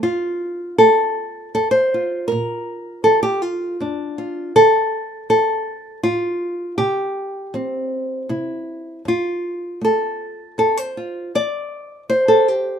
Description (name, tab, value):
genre	folk, solo fingerstyle acoustic guitar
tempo	80 BPM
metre	3/4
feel	straight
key	F major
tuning	A4 = 440 Hz
part	nylon-string guitar	solo	0.0-12.8 s	F2 to D5	-17 LUFS	equal	none
room	little or no reverb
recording	minimal, uncompressed stereo recording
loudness	-17 LUFS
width	side -8 dB against mid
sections	0.0-12.8 A section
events	none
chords	0.0 F; 2.3 Bb; 4.6 Dm; 6.8 Csus4; 8.3 C; 9.1 F; 11.3 C/E